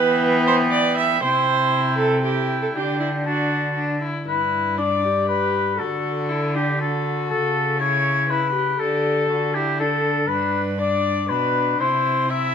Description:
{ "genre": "classical, renaissance-style consort dance", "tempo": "120 BPM", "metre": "3/4", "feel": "straight", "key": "G major", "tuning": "A4 = 440 Hz", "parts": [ { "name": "warm oboe", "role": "melody", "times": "0.0-12.5 s", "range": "G4 to A5", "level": "-22 LUFS", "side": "left 3 dB", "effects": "none" }, { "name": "warm viola", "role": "second line", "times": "0.0-12.5 s", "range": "E4 to E5", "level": "-24 LUFS", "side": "right 4 dB", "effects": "none" }, { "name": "warm viola", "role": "accompaniment", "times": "0.0-12.5 s", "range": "B3 to G4", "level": "-27 LUFS", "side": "left 4 dB", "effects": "none" }, { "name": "rich cello", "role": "bass", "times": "0.0-12.5 s", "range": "G2 to E3", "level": "-25 LUFS", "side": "equal", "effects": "none" } ], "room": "moderate stone room reverb, RT60 1.2 s", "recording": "minimal, uncompressed stereo recording", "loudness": "-18 LUFS", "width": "side -7 dB against mid", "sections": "0.0-4.3 A section; 4.3-12.5 B section", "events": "none", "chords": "0.0 Em; 1.2 C; 2.8 Dsus4; 3.3 D; 4.3 G; 5.8 D; 7.3 A/C#; 8.8 Dsus4; 9.3 D; 10.3 G; 11.8 C" }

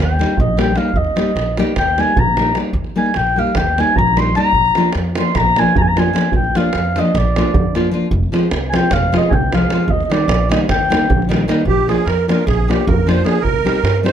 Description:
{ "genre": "balkan folk, Balkan wedding band", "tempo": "302 BPM (eighths)", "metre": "9/8", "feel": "straight", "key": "Eb major", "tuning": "A4 = 439 Hz", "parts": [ { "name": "dark clarinet", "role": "melody", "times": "0.0-14.1 s", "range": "G4 to C6", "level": "-18 LUFS", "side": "equal", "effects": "plate reverb" }, { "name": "upright bass", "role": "bass", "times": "0.0-14.1 s", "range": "F1 to G2", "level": "-19 LUFS", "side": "equal", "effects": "none" }, { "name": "davul", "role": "percussion", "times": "0.1-14.1 s", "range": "none", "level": "-20 LUFS", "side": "right 2 dB", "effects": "none" }, { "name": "nylon-string guitar", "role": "accompaniment", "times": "0.2-14.1 s", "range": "Eb3 to G4", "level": "-18 LUFS", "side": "left 2 dB", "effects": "none" }, { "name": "musette accordion", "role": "second line", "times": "11.7-14.1 s", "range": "G4 to C5", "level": "-23 LUFS", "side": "right 8 dB", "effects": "none" } ], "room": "light reverb", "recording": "close, detailed microphones", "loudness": "-13 LUFS", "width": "side -9 dB against mid", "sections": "0.0-11.7 A section; 11.7-14.1 B section", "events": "clarinet solo 0.0-11.7", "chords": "0.0 Eb; 4.5 Bb; 8.1 Fm; 9.9 Eb; 11.7 Bb; 13.4 Cm" }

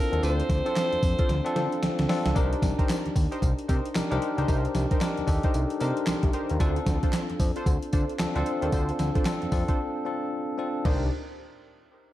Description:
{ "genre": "R&B, new jack swing", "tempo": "113 BPM", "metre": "4/4", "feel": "swing 61% on 16ths", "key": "C dorian", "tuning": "A4 = 438 Hz", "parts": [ { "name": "edgy alto saxophone", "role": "melody", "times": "0.0-1.8 s", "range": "Bb4 to C5", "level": "-30 LUFS", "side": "right 1 dB", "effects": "tape echo" }, { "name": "bell-like tine electric piano", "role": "accompaniment", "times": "0.0-11.1 s", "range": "C4 to C6", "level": "-30 LUFS", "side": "left 2 dB", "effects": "medium stereo tremolo" }, { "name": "fat analog bass", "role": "bass", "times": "0.1-11.1 s", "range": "C2 to D3", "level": "-28 LUFS", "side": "equal", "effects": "none" }, { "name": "gated 80s digital drum machine", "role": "drums", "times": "0.1-11.0 s", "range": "crash cymbal, handclaps, hi-hat, kick drum, snare drum, tambourine, toms", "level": "-26 LUFS", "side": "equal", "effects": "gated reverb, gated reverb snare, overdrive" }, { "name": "funky polysynth comp", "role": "stabs", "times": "0.2-11.1 s", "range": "D4 to C5", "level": "-35 LUFS", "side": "right 1 dB", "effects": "chorus, tape echo" } ], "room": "moderate echo chamber reverb, RT60 1.7 s, digital ambience", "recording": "dark, warm production", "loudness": "-24 LUFS", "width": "side -14 dB against mid", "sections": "0.0-2.4 A section; 2.4-10.9 B section; 10.9-12.1 C section", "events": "drum fill 1.3-2.4; tine electric piano fill 5.8-6.6; break 9.8-10.9", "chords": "0.0 Dm7; 2.4 Cm7; 6.6 Dm7; 10.9 Cm7" }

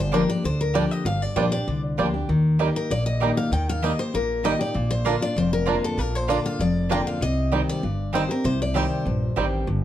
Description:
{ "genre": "bluegrass", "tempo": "195 BPM", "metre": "4/4", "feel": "straight", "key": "unclear", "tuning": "A4 = 440 Hz", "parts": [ { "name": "picked steel-string acoustic guitar", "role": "melody", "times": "0.0-9.5 s", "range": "A4 to G5", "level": "-28 LUFS", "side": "left 2 dB", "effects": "none" }, { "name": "picked steel-string acoustic guitar", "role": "accompaniment", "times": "0.0-9.8 s", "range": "F2 to G4", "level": "-26 LUFS", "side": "left 2 dB", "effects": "none" }, { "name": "upright bass", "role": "bass", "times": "0.0-9.8 s", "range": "F1 to Eb2", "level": "-26 LUFS", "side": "equal", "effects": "none" }, { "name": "bluegrass banjo", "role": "arpeggios", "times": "0.1-9.4 s", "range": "G3 to Eb4", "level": "-26 LUFS", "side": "right 5 dB", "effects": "none" }, { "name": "mandolin", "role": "stabs", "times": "0.1-9.5 s", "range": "Bb3 to Bb5", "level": "-29 LUFS", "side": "right 7 dB", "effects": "none" } ], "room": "moderate studio reverb, RT60 0.6 s", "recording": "dark, warm production", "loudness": "-21 LUFS", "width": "side -12 dB against mid", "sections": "0.0-9.8 A section", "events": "none", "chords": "0.0 Gm7; 2.3 Eb; 4.8 Bb; 7.2 Cm" }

